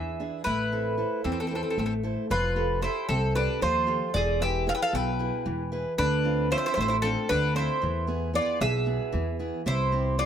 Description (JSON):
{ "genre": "greek folk, Greek bouzouki band", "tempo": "228 BPM (eighths)", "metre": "7/8", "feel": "straight", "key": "unclear", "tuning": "A4 = 440 Hz", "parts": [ { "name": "Greek bouzouki", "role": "melody", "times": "0.0-10.3 s", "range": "A4 to G5", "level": "-28 LUFS", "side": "equal", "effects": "none" }, { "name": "mandolin", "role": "second line", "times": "0.0-10.3 s", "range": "C4 to B4", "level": "-33 LUFS", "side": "equal", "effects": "none" }, { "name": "fingerpicked acoustic archtop guitar", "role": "accompaniment", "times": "0.0-10.3 s", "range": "B2 to C5", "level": "-31 LUFS", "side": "right 2 dB", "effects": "none" }, { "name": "upright bass", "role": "bass", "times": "0.0-10.2 s", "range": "E1 to E2", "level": "-30 LUFS", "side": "left 1 dB", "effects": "none" } ], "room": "light reverb", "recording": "none", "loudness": "-24 LUFS", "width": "side -8 dB against mid", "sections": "0.0-2.3 A section; 2.3-10.3 B section", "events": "none", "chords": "0.5 Am; 2.3 Fadd9; 4.1 E; 6.0 Dm7; 7.8 E; 9.7 C" }